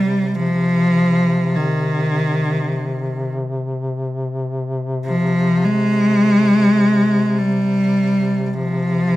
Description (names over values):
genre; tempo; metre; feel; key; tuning
caucasian folk, Caucasian lament; free time; none; none; C minor; A4 = 440 Hz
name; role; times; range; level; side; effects
rich cello; melody; 0.0-9.2 s; Eb3 to Ab3; -15 LUFS; equal; none
mellow duduk; drone; 0.0-9.2 s; C3; -22 LUFS; left 1 dB; none
room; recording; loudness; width
light reverb; close, detailed microphones; -15 LUFS; side -16 dB against mid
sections
0.0-9.2 A section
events
none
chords
none